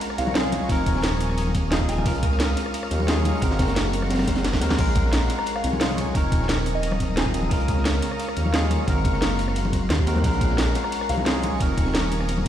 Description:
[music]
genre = liquid drum and bass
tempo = 176 BPM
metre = 4/4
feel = straight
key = Bb minor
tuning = A4 = 439 Hz
[part]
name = soft synth bell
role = melody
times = 0.0-2.1, 5.4-7.0, 10.8-11.3 s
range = Eb5 to Bb5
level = -32 LUFS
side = left 2 dB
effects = chorus, phaser, ping-pong delay
[part]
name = bell-like tine electric piano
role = accompaniment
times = 0.0-12.5 s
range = F3 to Bb4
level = -28 LUFS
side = equal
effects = analog chorus, digital delay
[part]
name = shimmering ambient pad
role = sustained chords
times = 0.0-12.5 s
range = Bb4 to Eb6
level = -32 LUFS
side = equal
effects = chorus, built-in reverb, sidechain pumping
[part]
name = crunchy breakbeat drum kit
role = drums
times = 0.0-12.5 s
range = hi-hat, snare drum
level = -31 LUFS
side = equal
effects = high-pass filter on hats, high-pass filter on snare, high-pass filter on room
[part]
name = drum and bass drum kit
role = drums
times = 0.0-12.5 s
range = crash cymbal, hi-hat, ride cymbal, rim click, snare drum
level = -29 LUFS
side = right 1 dB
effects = none
[part]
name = dark detuned saw bass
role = bass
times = 0.2-12.5 s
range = Eb1 to Eb2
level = -25 LUFS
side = equal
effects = none
[part]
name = congas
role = percussion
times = 0.3-12.4 s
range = none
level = -31 LUFS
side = left 4 dB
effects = none
[part]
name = electronic kick drum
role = drums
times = 0.7-12.5 s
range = none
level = -25 LUFS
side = equal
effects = none
[sound]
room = light reverb, digital ambience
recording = played on a big sound system in a bare room, stone room reverb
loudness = -20 LUFS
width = side -10 dB against mid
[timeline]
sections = 0.0-12.5 A section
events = drum fill 4.4-4.8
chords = 0.0 Bbm7; 0.7 F7sus4; 2.1 Db6; 3.4 Ab9; 4.8 Bbm7; 6.2 F7sus4; 7.5 Db6; 8.9 Ab9; 10.2 Bbm7; 11.6 F7sus4

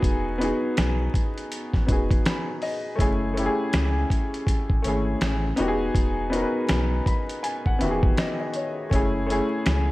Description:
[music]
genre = lo-fi hip hop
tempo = 81 BPM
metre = 4/4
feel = swing 59% on 16ths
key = unclear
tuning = A4 = 440 Hz
[part]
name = warm upright piano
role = accompaniment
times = 0.0-9.9 s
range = D#3 to B5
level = -25 LUFS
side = left 1 dB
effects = low-pass filter
[part]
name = soft dub sub bass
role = bass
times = 0.0-9.9 s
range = E1 to C#2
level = -27 LUFS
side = equal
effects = none
[part]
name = dusty soul sampler-style drum kit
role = drums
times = 0.0-9.9 s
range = finger snaps, hi-hat, kick drum, snare drum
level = -24 LUFS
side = equal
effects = none
[sound]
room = digital ambience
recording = vinyl crackle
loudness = -22 LUFS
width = side -18 dB against mid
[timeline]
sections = 0.0-9.9 A section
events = none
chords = 0.0 Emaj7; 3.0 F#m7; 5.6 Emaj7; 8.9 F#m7

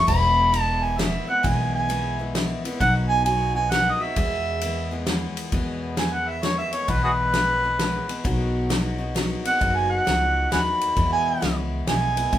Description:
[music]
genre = honky-tonk and classic country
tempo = 132 BPM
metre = 3/4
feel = swing 65% on 8ths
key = E major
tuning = A4 = 439 Hz
[part]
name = mellow harmonica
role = melody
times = 0.0-12.4 s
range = F#4 to B5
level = -22 LUFS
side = right 1 dB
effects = none
[part]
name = picked steel-string acoustic guitar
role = accompaniment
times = 0.0-12.4 s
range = E2 to G#4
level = -29 LUFS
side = left 2 dB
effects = none
[part]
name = upright bass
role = bass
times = 0.1-12.4 s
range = E1 to E2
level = -27 LUFS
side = equal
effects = none
[part]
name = natural country drum kit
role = drums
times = 0.1-12.4 s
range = crash cymbal, kick drum, ride cymbal, snare drum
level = -27 LUFS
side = left 1 dB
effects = none
[sound]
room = wet studio reverb, RT60 0.5 s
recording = band playing live in one room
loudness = -20 LUFS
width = side -12 dB against mid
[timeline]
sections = 0.0-5.5 A section; 5.5-12.4 B section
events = harmonica solo 5.5-12.4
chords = 0.1 E; 2.8 B; 4.2 E; 8.2 B; 11.0 E

